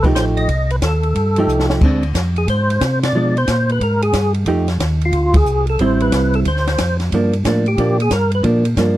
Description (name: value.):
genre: soul jazz organ trio.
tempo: 181 BPM.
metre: 4/4.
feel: swing 64% on 8ths.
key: F mixolydian.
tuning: A4 = 440 Hz.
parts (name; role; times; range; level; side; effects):
percussive tonewheel organ; melody; 0.0-8.4 s; F4 to Eb5; -19 LUFS; equal; slow rotary speaker, chorus vibrato.
vintage hollow-body jazz guitar; accompaniment; 0.0-9.0 s; F3 to G4; -17 LUFS; right 2 dB; none.
mellow tonewheel organ; bass; 0.0-9.0 s; A1 to C3; -17 LUFS; equal; slow rotary speaker.
compact cocktail drum kit; drums; 0.0-8.9 s; crash cymbal, hi-hat, kick drum, ride cymbal, snare drum; -20 LUFS; equal; none.
room: small room ambience.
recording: dry, close 1970s-style studio recording, lossy compression artefacts.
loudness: -14 LUFS.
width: side -14 dB against mid.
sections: 0.0-9.0 A section.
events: drum fill 1.5-1.8; band accent 3.0, 5.3.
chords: 0.0 F9; 1.8 Dm7b5; 3.1 Bdim7; 4.5 F9; 5.8 Am7; 6.5 Dm7; 7.1 Gm7.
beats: 0.16 | 0.49 0.82 1.15 1.48 | 1.81 2.15 2.48 2.81 | 3.14 3.47 3.80 4.13 | 4.47 4.80 5.13 5.46 | 5.79 6.12 6.45 6.78 | 7.11 7.44 7.77 8.10 | 8.43 8.76.